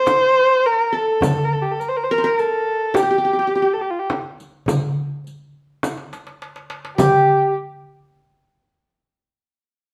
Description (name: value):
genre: Turkish makam ensemble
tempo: 104 BPM (eighths)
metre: 10/8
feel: straight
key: G makam nihavent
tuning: A4 = 439 Hz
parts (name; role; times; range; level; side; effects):
- warm kamancheh; melody; 0.0-7.5 s; F4 to C5; -20 LUFS; equal; none
- qanun; second line; 0.0-7.5 s; G4 to C5; -21 LUFS; equal; none
- darbuka; percussion; 0.1-7.5 s; none; -28 LUFS; equal; none
- frame drum; percussion; 0.1-7.5 s; none; -26 LUFS; equal; none
- riq; percussion; 0.1-7.5 s; none; -32 LUFS; equal; none
room: wet studio reverb, RT60 0.9 s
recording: band playing live in one room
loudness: -19 LUFS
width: mono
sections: 0.0-7.0 A section; 7.0-9.9 B section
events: drum fill 5.8-7.0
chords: none